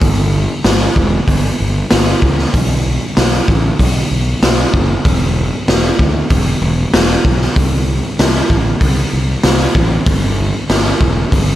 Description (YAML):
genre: quiet-loud alternative rock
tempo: 96 BPM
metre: 4/4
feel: straight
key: unclear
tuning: A4 = 442 Hz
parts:
  - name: fuzz fingered electric bass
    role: bass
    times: 0.0-11.5 s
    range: E1 to D2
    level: -16 LUFS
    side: equal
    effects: overdrive
  - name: raw garage drum kit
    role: drums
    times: 0.0-11.5 s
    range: hi-hat, kick drum, snare drum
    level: -13 LUFS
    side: equal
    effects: none
room: light reverb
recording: lossy compression artefacts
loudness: -11 LUFS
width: side -13 dB against mid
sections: 0.0-11.6 A section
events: none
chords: none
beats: | 0.02 0.65 1.28 1.91 | 2.54 3.16 3.79 4.42 | 5.05 5.67 6.30 6.93 | 7.56 8.19 8.81 9.44 | 10.07 10.70 11.33